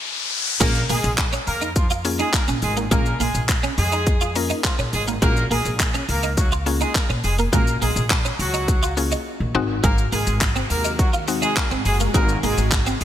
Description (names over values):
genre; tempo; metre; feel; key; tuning
dance-pop; 104 BPM; 4/4; straight; Bb minor; A4 = 440 Hz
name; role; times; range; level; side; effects
riser; sound effects; 0.0-0.6 s; none; -25 LUFS; left 4 dB; none
warm horn section; melody; 0.6-13.0 s; F3 to Bb4; -26 LUFS; right 1 dB; sidechain pumping, digital delay
mallet-like synth pluck; accompaniment; 0.6-13.0 s; Ab3 to Bb4; -28 LUFS; left 5 dB; chorus, sidechain pumping
twelve-string electric guitar; riff; 0.6-13.0 s; Ab3 to F4; -28 LUFS; right 4 dB; ensemble chorus
upright bass; bass; 0.6-13.0 s; F1 to Bb2; -24 LUFS; equal; sidechain pumping
pop drum kit; drums; 0.6-13.0 s; crash cymbal, handclaps, hi-hat, kick drum, shaker; -22 LUFS; equal; gated reverb
supersaw pad; sustained chords; 9.8-13.0 s; C3 to Gb4; -30 LUFS; equal; wide subtle chorus, sidechain pumping
room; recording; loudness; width
light reverb; bright 1980s-style digital production; -18 LUFS; side -11 dB against mid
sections
0.6-13.0 A section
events
riser 0.0-0.6; stop 0.0-0.6; drop 0.6-13.0; break 9.3-9.8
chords
0.3 N.C.; 0.6 Bbm7; 5.2 Gbmaj7; 9.5 Ab7